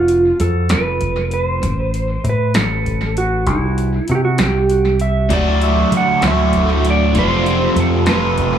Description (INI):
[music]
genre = psychedelic rock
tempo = 65 BPM (dotted quarters)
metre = 6/8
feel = straight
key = unclear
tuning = A4 = 438 Hz
[part]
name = clean lap steel guitar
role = melody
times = 0.0-8.6 s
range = E4 to F#5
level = -18 LUFS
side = right 2 dB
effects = tape echo
[part]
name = deep dub picked electric bass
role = bass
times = 0.0-8.6 s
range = F1 to D3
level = -18 LUFS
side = equal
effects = none
[part]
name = electro analog drum machine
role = drums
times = 0.1-8.5 s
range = hi-hat, kick drum, snare drum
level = -22 LUFS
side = equal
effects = tape echo
[part]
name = string machine, cellos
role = sustained chords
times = 5.3-8.6 s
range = F3 to A4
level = -22 LUFS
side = right 3 dB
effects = phaser, ensemble chorus
[part]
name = cranked stack guitar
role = riff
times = 5.3-8.6 s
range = D2 to F#4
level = -17 LUFS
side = left 1 dB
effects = overdrive, phaser, tape echo
[sound]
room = moderate spring reverb, RT60 1.5 s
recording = echo-heavy mix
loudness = -14 LUFS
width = side -9 dB against mid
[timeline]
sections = 0.0-8.6 A section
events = none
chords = 0.0 N.C.; 1.6 Am; 3.5 C; 5.3 D; 7.1 F